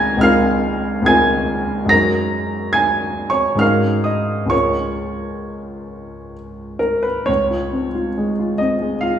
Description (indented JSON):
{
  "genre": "classical, impressionist solo piano",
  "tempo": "63-72 BPM",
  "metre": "3/4",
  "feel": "rubato",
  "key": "Db major",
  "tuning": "A4 = 440 Hz",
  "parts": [
    { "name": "clear grand piano", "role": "solo", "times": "0.0-9.2 s", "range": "Db2 to Bb6", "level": "-16 LUFS", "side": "equal", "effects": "none" }
  ],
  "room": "wet recital hall reverb, RT60 1.6 s",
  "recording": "heard from further back in the room",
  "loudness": "-15 LUFS",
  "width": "side -9 dB against mid",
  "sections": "0.0-7.3 A section; 7.3-9.2 B section",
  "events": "none",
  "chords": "0.0 Bbm9/Db; 1.9 Gbadd9; 3.6 Ab9sus4; 4.5 Db6; 7.3 Dbmaj7"
}